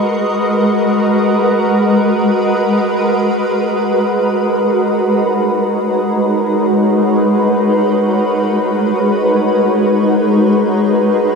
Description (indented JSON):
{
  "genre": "ambient",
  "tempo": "free time",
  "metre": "none",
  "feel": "none",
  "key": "G# minor",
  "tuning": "A4 = 440 Hz",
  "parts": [
    { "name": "shimmering ambient pad", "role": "sustained chords", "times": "0.0-11.4 s", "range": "G#3 to D#5", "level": "-12 LUFS", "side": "equal", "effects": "chorus, built-in reverb" },
    { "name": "warm studio violin section", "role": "texture", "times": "0.0-3.1 s", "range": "C#6", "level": "-35 LUFS", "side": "right 1 dB", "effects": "none" }
  ],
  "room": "wet concert hall reverb, RT60 2.1 s",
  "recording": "none",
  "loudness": "-12 LUFS",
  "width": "side -4 dB against mid",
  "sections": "0.0-3.1 A section; 3.1-11.4 B section",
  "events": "none",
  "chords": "0.0 G#m11"
}